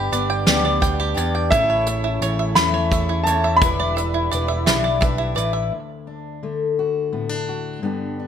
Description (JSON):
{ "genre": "indie folk with a building arrangement", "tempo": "57 BPM (dotted quarters)", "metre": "6/8", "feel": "straight", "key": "unclear", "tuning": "A4 = 443 Hz", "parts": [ { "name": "clear upright piano", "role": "melody", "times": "0.0-5.0 s", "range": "E5 to B5", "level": "-22 LUFS", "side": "equal", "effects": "none" }, { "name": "picked twelve-string acoustic guitar", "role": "accompaniment", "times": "0.0-5.7 s", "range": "G2 to B4", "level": "-24 LUFS", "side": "left 5 dB", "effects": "none" }, { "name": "mellow French horn section", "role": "sustained chords", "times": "0.0-5.7 s", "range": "C#3 to G4", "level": "-29 LUFS", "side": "right 4 dB", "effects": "none" }, { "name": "bluegrass banjo", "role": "arpeggios", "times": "0.0-5.7 s", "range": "E4 to G5", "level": "-26 LUFS", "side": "right 6 dB", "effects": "analog delay" }, { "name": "picked electric bass", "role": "bass", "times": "0.0-5.7 s", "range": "E1 to E2", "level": "-24 LUFS", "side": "equal", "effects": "none" }, { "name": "soft brush drum kit", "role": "drums", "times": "0.1-5.5 s", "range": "hi-hat, kick drum, snare drum", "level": "-21 LUFS", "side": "right 1 dB", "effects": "none" }, { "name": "fingerpicked steel-string acoustic guitar", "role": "accompaniment", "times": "5.7-8.3 s", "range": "D2 to G4", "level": "-24 LUFS", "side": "left 5 dB", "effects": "none" } ], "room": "moderate large studio reverb, RT60 1.2 s", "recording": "none", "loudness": "-18 LUFS", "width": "side -8 dB against mid", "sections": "0.0-5.7 A section; 5.7-8.3 B section", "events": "none", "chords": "0.0 G; 1.5 A; 3.6 Em7; 5.7 D", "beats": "0.47 | 1.52 2.56 | 3.62 4.67 | 5.72 6.77 | 7.83" }